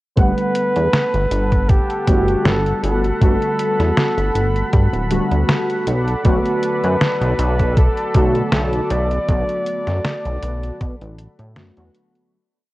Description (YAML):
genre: vaporwave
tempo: 79 BPM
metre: 4/4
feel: swing 54% on 16ths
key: G major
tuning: A4 = 440 Hz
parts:
  - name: warm flugelhorn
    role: melody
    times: 0.2-11.2 s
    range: G4 to D5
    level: -23 LUFS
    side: equal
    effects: tape echo
  - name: warbly lo-fi synth keys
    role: accompaniment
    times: 0.2-12.4 s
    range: D3 to F#5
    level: -22 LUFS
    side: equal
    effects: ensemble chorus
  - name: lush unison pad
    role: sustained chords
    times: 0.2-12.3 s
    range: A4 to B5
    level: -27 LUFS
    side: equal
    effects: chorus
  - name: chorused synth bass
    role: bass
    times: 0.2-11.9 s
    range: D1 to B2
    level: -20 LUFS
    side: equal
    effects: none
  - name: detuned 8-bit digital drum machine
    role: drums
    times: 0.2-12.3 s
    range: hi-hat, snare drum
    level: -21 LUFS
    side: equal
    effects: small room ambience
  - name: electronic kick drum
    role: drums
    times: 0.2-11.0 s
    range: none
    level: -16 LUFS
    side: equal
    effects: small room ambience
room: light reverb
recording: worn, warbling old tape, cassette tape, warbly pitch drift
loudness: -15 LUFS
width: side -18 dB against mid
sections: 0.2-12.3 groove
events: fade-out 8.3-12.3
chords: 0.2 Gmaj9; 5.9 Bm7